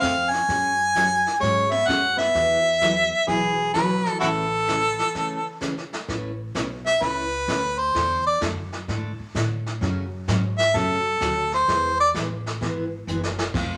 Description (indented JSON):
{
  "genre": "country, western swing",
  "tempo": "129 BPM",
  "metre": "4/4",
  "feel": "swing 66% on 8ths",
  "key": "A major",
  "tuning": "A4 = 440 Hz",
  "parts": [
    { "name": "clear harmonica", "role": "melody", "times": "0.0-12.1 s", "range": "E4 to G#5", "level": "-22 LUFS", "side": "equal", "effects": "none" },
    { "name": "archtop guitar, miked and amplified", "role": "second line", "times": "0.0-5.6 s", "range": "E3 to C#4", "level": "-33 LUFS", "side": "equal", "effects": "none" },
    { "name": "picked steel-string acoustic guitar", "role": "accompaniment", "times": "0.0-13.8 s", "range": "C#3 to C#5", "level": "-33 LUFS", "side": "equal", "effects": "none" },
    { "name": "upright bass", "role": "bass", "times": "0.0-13.8 s", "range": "F1 to A2", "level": "-33 LUFS", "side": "equal", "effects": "none" },
    { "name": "jazz brush drum kit", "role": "drums", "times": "0.0-13.8 s", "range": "brushed snare drum, crash cymbal, hi-hat, kick drum, snare drum", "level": "-34 LUFS", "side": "equal", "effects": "none" }
  ],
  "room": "wet studio reverb, RT60 0.7 s",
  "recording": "none",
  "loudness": "-23 LUFS",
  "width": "mono",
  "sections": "0.0-6.1 A section; 6.1-13.8 B section",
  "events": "break 5.2-6.1; harmonica solo 6.1-13.8; drum fill 13.1-13.5",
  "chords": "0.5 F#sus2; 2.4 Eadd9; 4.2 Amaj7; 6.1 Aadd9; 7.9 Dsus2; 9.8 F#m; 11.7 E",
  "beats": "0.02 | 0.48 0.95 1.42 1.89 | 2.35 2.82 3.29 3.75 | 4.22 4.69 5.15 5.62 | 6.08 6.55 7.02 7.48 | 7.95 8.41 8.88 9.35 | 9.81 10.28 10.74 11.21 | 11.68 12.14 12.61 13.08 | 13.54"
}